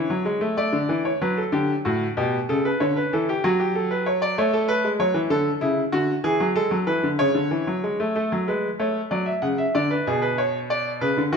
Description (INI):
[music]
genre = classical, baroque-style two-part invention for grand piano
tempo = 63 BPM (dotted quarters)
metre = 6/8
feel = straight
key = D major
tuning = A4 = 439 Hz
[part]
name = bright baby grand piano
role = solo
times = 0.0-11.4 s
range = A2 to F#5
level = -20 LUFS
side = equal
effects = none
[sound]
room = wet recital hall reverb, RT60 1.8 s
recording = minimal, uncompressed stereo recording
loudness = -20 LUFS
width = side -5 dB against mid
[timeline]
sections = 0.6-8.2 A section; 8.2-11.4 B section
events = none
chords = 0.0 A; 0.6 D; 1.5 A13sus4; 2.5 A/C#; 3.4 D/F#; 4.4 A; 5.3 Dmaj9; 6.2 E; 7.2 A/C#; 8.2 A; 9.1 Dmaj7; 10.1 G#dim/B